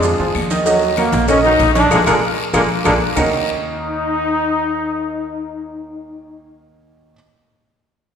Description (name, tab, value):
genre	latin, salsa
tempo	192 BPM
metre	4/4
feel	straight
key	Eb minor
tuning	A4 = 441 Hz
part	warm trombone section	melody	0.0-6.4 s	Gb3 to Eb4	-18 LUFS	left 1 dB	none
part	bright baby grand piano	accompaniment	0.0-7.1 s	D3 to Eb5	-19 LUFS	right 2 dB	none
part	upright bass	bass	0.0-7.1 s	Bb1 to F2	-24 LUFS	equal	none
part	congas	percussion	0.0-3.2 s	none	-25 LUFS	left 1 dB	none
part	guiro	percussion	0.0-3.2 s	none	-30 LUFS	left 5 dB	none
part	maracas	percussion	0.0-3.2 s	none	-31 LUFS	right 6 dB	none
part	claves	percussion	0.4-3.2 s	none	-29 LUFS	left 4 dB	none
part	cowbell and bongos	percussion	0.7-3.2 s	none	-24 LUFS	left 3 dB	none
room	wet scoring stage reverb, RT60 1.6 s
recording	recorded in a church or concert hall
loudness	-14 LUFS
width	side -7 dB against mid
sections	0.0-3.2 A section; 3.2-5.7 B section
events	band accent 1.9-3.2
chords	0.0 Bb7(no3) (rootless); 0.7 Ebm; 1.9 Bb7(no3); 3.2 Ebm7